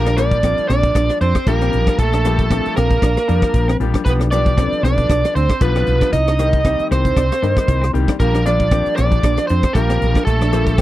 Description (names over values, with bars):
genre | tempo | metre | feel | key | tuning
electric jazz fusion | 116 BPM | 4/4 | swing 55% on 16ths | Bb major | A4 = 440 Hz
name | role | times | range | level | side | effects
biting lead guitar | melody | 0.0-10.8 s | A4 to Eb5 | -20 LUFS | equal | overdrive
breathy tenor saxophone | second line | 0.0-10.8 s | A3 to Eb4 | -25 LUFS | right 8 dB | none
bright concert grand piano | accompaniment | 0.0-10.8 s | Eb3 to Bb4 | -24 LUFS | left 8 dB | none
woody fretless electric bass | bass | 0.0-10.8 s | Bb1 to G2 | -18 LUFS | equal | none
clean electric guitar | stabs | 0.1-10.8 s | C4 to D4 | -26 LUFS | equal | lush chorus
tight funk drum kit | drums | 0.1-10.8 s | hi-hat, kick drum, rim click | -19 LUFS | equal | none
room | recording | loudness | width
little or no reverb | dry, close 1970s-style studio recording | -14 LUFS | side -15 dB against mid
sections
0.0-10.8 A section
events
none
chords
0.0 Bb6; 4.1 G7/B; 6.1 Cm7; 8.2 Bb6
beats
0.44 0.95 1.47 | 1.99 2.51 3.02 3.54 | 4.06 4.58 5.10 5.61 | 6.13 6.65 7.17 7.68 | 8.20 8.72 9.24 9.75 | 10.27 10.79